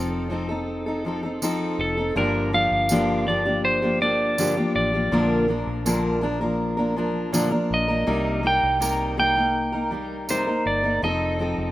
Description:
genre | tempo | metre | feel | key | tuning
acoustic pop | 81 BPM | 4/4 | straight | G minor | A4 = 439 Hz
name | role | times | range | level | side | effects
clean lap steel guitar | melody | 0.0-11.7 s | A4 to G5 | -24 LUFS | right 1 dB | none
fingerpicked steel-string acoustic guitar | accompaniment | 0.0-11.7 s | G2 to Bb4 | -23 LUFS | left 1 dB | none
vintage muted fingered electric bass | bass | 0.0-11.7 s | F1 to C2 | -32 LUFS | equal | none
tambourine | percussion | 1.4-10.5 s | none | -31 LUFS | right 4 dB | none
room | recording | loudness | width
moderate plate reverb, RT60 2.8 s | rough home demo mix | -20 LUFS | side -15 dB against mid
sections
0.0-2.2 A section; 2.2-11.7 B section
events
none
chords
0.0 F7; 2.2 Gm7; 5.1 Bb; 8.1 Cm7; 11.0 F7

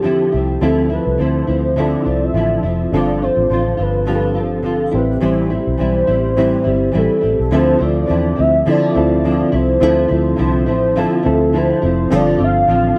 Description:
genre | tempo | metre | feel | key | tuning
indie pop | 104 BPM | 4/4 | swing 55% on 16ths | D dorian | A4 = 438 Hz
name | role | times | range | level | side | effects
warm velvety synth lead | melody | 0.0-13.0 s | G4 to F5 | -21 LUFS | equal | subtle chorus, tape echo
nylon-string guitar | accompaniment | 0.0-13.0 s | G2 to F4 | -21 LUFS | equal | ensemble chorus, vibrato effect
reed electric piano | accompaniment | 0.0-13.0 s | C4 to C5 | -23 LUFS | equal | fast tremolo, cassette tape
vintage muted fingered electric bass | bass | 0.0-12.9 s | F1 to D3 | -22 LUFS | equal | none
room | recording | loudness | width
digital ambience | none | -16 LUFS | mono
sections
0.0-7.5 A section; 7.5-13.0 B section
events
none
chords
0.0 Dm9; 2.9 G7sus4; 4.9 Am7; 7.5 Dm9; 12.1 G7sus4

